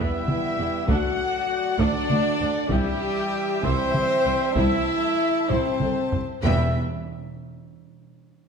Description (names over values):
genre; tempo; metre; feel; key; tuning
cinematic, epic orchestral film score; 65 BPM (dotted quarters); 6/8; straight; E minor; A4 = 441 Hz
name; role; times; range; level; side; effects
rich symphonic violin section; melody; 0.0-6.8 s; E5 to A5; -37 LUFS; left 4 dB; none
concert flute; second line; 0.0-6.8 s; G4 to F#5; -32 LUFS; left 2 dB; none
rich symphonic violin section; second line; 0.0-6.8 s; G4 to F#5; -33 LUFS; left 1 dB; none
rich symphonic viola section; accompaniment; 0.0-6.8 s; B3 to E5; -33 LUFS; left 1 dB; none
warm French horn section; sustained chords; 0.0-6.7 s; G3 to F#4; -27 LUFS; left 2 dB; none
warm trombone section; sustained chords; 0.0-6.7 s; E3 to B3; -35 LUFS; right 5 dB; none
warm trumpet section; stabs; 0.0-6.7 s; G4 to F#5; -29 LUFS; right 1 dB; none
rich symphonic cello section; bass; 0.0-6.8 s; C2 to E2; -30 LUFS; right 3 dB; none
rich symphonic double bass section; bass; 0.0-6.8 s; E1 to D2; -30 LUFS; right 3 dB; none
taiko ensemble; drums; 0.3-6.4 s; none; -28 LUFS; left 1 dB; none
timpani; percussion; 6.4-6.7 s; E2; -32 LUFS; left 1 dB; none
room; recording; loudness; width
wet scoring stage reverb, RT60 1.6 s; none; -21 LUFS; side -6 dB against mid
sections
0.0-6.4 A section; 6.4-8.3 B section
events
drum fill 5.5-6.4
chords
0.0 Em; 0.9 D; 2.7 C; 4.6 Am/C; 6.4 Em